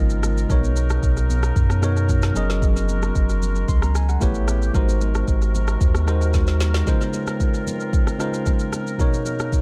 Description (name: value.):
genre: amapiano.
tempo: 113 BPM.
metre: 4/4.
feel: straight.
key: Db major.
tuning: A4 = 440 Hz.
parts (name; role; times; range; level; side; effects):
tine electric piano; accompaniment; 0.0-9.6 s; Cb3 to C6; -28 LUFS; equal; tape echo.
mellow woodwind section; sustained chords; 0.0-9.6 s; Db2 to Bb4; -34 LUFS; equal; none.
warm sub bass; bass; 0.0-6.8 s; Gb1 to Gb2; -23 LUFS; equal; none.
afro-pop drum kit; drums; 0.1-9.6 s; kick drum, rim click, shaker, snare drum; -24 LUFS; equal; none.
congas; percussion; 0.2-9.5 s; none; -38 LUFS; equal; none.
room: digital ambience.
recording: echo-heavy mix.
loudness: -20 LUFS.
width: mono.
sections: 0.0-9.6 A section.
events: drum fill 6.3-6.9.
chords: 0.5 Cbmaj9; 2.4 Gb69; 4.2 A9; 4.7 Ab9; 6.9 Dbmaj13; 9.0 Cbmaj9.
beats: | 0.50 1.03 1.56 2.09 | 2.62 3.15 3.69 4.22 | 4.75 5.28 5.81 6.34 | 6.87 7.40 7.93 8.46 | 8.99 9.53.